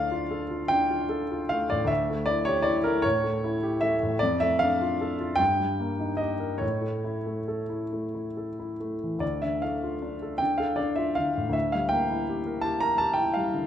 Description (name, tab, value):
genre	classical, romantic nocturne for solo piano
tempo	45-56 BPM (dotted quarters)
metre	6/8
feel	rubato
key	D minor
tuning	A4 = 440 Hz
part	warm grand piano	solo	0.0-13.7 s	D2 to Bb5	-24 LUFS	equal	none
room	moderate recital hall reverb, RT60 1.3 s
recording	none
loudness	-24 LUFS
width	side -10 dB against mid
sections	0.0-13.7 A section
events	none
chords	0.0 Dm; 1.9 A7/D; 4.2 Dm/F; 5.4 Eb/G; 6.6 A; 9.2 Dm; 11.5 Em7b5/D